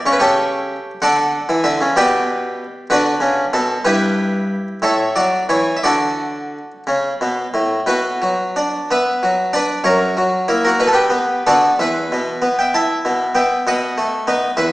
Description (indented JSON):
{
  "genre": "classical, baroque-style suite movement for harpsichord",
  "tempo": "58-65 BPM (dotted quarters)",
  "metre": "6/8",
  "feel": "rubato",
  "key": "D major, B minor from 7.9 s",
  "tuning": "A4 = 440 Hz",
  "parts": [
    { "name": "harpsichord", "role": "solo", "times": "0.0-14.7 s", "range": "E2 to A5", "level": "-15 LUFS", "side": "equal", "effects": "none" }
  ],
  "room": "wet recital hall reverb, RT60 1.5 s",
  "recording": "heard from further back in the room, small speaker sound",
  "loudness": "-15 LUFS",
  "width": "side -18 dB against mid",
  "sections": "0.0-7.9 A section; 7.9-14.7 A section",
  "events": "none",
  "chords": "0.1 A7/C#; 1.0 D; 2.0 G/B; 2.9 D; 3.8 Em/G; 4.8 A; 5.8 D; 7.9 Bm; 9.8 F#7; 10.8 Bm; 11.8 E5; 13.6 B7",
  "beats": "| 0.05 1.03 | 1.97 2.90 | 3.85 4.82 | 5.85 6.87 | 7.89 8.89 | 9.84 10.79 | 11.78 12.72 | 13.65 14.57"
}